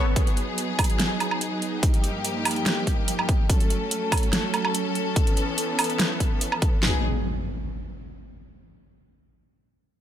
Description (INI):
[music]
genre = heavy wobble dubstep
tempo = 144 BPM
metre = 4/4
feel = half-time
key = G# phrygian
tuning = A4 = 443 Hz
[part]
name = rich studio string section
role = sustained chords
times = 0.0-7.0 s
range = G2 to A4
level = -27 LUFS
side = equal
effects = sidechain pumping
[part]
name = big-room dance drum kit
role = drums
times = 0.2-6.7 s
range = hi-hat, snare drum, woodblock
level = -26 LUFS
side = right 2 dB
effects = overdrive
[part]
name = dubstep drum kit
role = drums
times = 0.2-6.9 s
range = handclaps, kick drum, snare drum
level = -22 LUFS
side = equal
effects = none
[part]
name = impact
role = sound effects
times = 6.8-8.5 s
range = none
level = -29 LUFS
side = equal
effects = none
[sound]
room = light reverb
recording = none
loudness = -22 LUFS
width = side -10 dB against mid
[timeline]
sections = 0.0-6.8 A section; 6.8-8.5 B section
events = none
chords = 0.2 G#m7; 1.8 D#add9/G; 3.5 F#m; 5.2 Aadd9; 6.8 G#m7